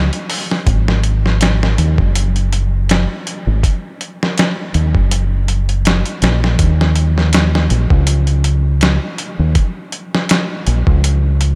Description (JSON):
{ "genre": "trip hop", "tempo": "81 BPM", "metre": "4/4", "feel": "swing 55% on 16ths", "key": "Eb minor", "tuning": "A4 = 443 Hz", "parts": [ { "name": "deep dub fingered electric bass", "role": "bass", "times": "0.0-11.6 s", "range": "Gb1 to Eb2", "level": "-16 LUFS", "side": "equal", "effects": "none" }, { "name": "dusty soul sampler-style drum kit", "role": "drums", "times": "0.1-11.6 s", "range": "hi-hat, kick drum, snare drum", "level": "-19 LUFS", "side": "equal", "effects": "none" } ], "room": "moderate cathedral reverb, RT60 5.3 s", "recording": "dreamy mix soaked in reverb", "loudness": "-15 LUFS", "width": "mono", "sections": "0.0-11.6 A section", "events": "none", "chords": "none" }